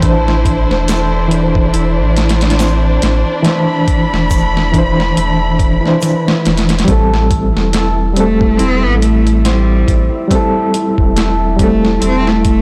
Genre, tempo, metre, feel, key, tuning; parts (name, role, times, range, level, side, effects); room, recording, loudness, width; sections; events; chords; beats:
trip hop; 70 BPM; 4/4; swing 57% on 16ths; A minor; A4 = 438 Hz
bright reed electric piano; accompaniment; 0.0-12.6 s; E3 to C5; -18 LUFS; equal; fast tremolo, vintage 12-bit sampler grit
warm symphonic violin section; sustained chords; 0.0-6.8 s; D4 to B5; -22 LUFS; equal
concert harp; arpeggios; 0.0-12.6 s; E3 to A4; -23 LUFS; equal; vintage 12-bit sampler grit, digital delay
warm sub bass; bass; 0.0-12.6 s; E1 to A1; -18 LUFS; equal
dusty soul sampler-style drum kit; drums; 0.0-12.6 s; hi-hat, kick drum, snare drum; -19 LUFS; equal; overdrive, studio reverb
egg shaker; percussion; 0.9-6.2 s; -34 LUFS; equal
wind-like tuned noise texture; texture; 7.3-12.6 s; E4; -26 LUFS; equal; built-in reverb
rich cello; melody; 8.2-12.6 s; G3 to C4; -19 LUFS; equal
light reverb, studio ambience; blown-out, overdriven recording, overdrive; -13 LUFS; mono
0.0-6.9 A section; 6.9-12.6 B section
0.0 Cadd9; 6.9 Am7
| 0.02 0.88 1.74 2.59 | 3.45 4.31 5.16 6.02 | 6.88 7.74 8.59 9.45 | 10.31 11.16 12.02